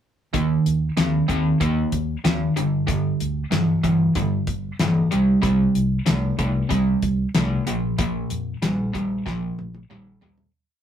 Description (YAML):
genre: classic rock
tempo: 94 BPM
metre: 4/4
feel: straight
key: unclear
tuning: A4 = 440 Hz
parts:
  - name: overdriven electric guitar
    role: riff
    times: 0.3-10.5 s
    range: G2 to C4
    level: -21 LUFS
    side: right 1 dB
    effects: none
  - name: fingered electric bass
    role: bass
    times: 0.3-10.4 s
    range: G1 to F2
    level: -27 LUFS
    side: left 1 dB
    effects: none
  - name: damped 70s drum kit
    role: drums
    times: 0.3-10.5 s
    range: hi-hat, kick drum, snare drum, toms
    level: -24 LUFS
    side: left 2 dB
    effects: none
room: wet small room reverb, RT60 0.5 s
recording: rough rehearsal-room recording, tube saturation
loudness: -19 LUFS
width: side -9 dB against mid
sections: 0.3-10.5 verse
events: fade-out 8.0-10.5; drum fill 9.3-10.5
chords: 0.3 Eb5; 2.6 G5; 5.1 C5; 7.7 Bb5